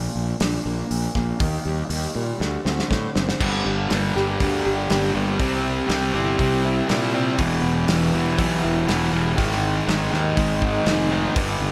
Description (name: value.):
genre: quiet-loud alternative rock.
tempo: 120 BPM.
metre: 4/4.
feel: straight.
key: unclear.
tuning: A4 = 440 Hz.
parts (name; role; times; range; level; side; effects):
fingerpicked steel-string acoustic guitar; arpeggios; 0.0-11.7 s; G2 to G4; -30 LUFS; equal; none.
fuzz fingered electric bass; bass; 0.0-11.7 s; E1 to Bb2; -28 LUFS; equal; overdrive.
loose indie drum kit; drums; 0.4-11.5 s; crash cymbal, hi-hat, kick drum, snare drum; -29 LUFS; equal; none.
fuzz guitar; riff; 3.4-11.7 s; E2 to C4; -24 LUFS; equal; distortion.
room: moderate lush hall reverb, RT60 2.4 s.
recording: big arena sound.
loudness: -22 LUFS.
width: mono.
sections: 0.0-3.4 A section; 3.4-11.7 B section.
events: half time 0.0-3.4; drum fill 2.4-3.4.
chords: 0.0 Bb; 1.4 Eb; 2.4 D7; 3.4 Gm; 5.4 C; 7.4 Em; 9.4 Ab.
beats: 0.41 0.91 | 1.41 1.91 2.41 2.91 | 3.41 3.90 4.40 4.90 | 5.40 5.90 6.40 6.89 | 7.39 7.89 8.38 8.88 | 9.38 9.88 10.37 10.87 | 11.36.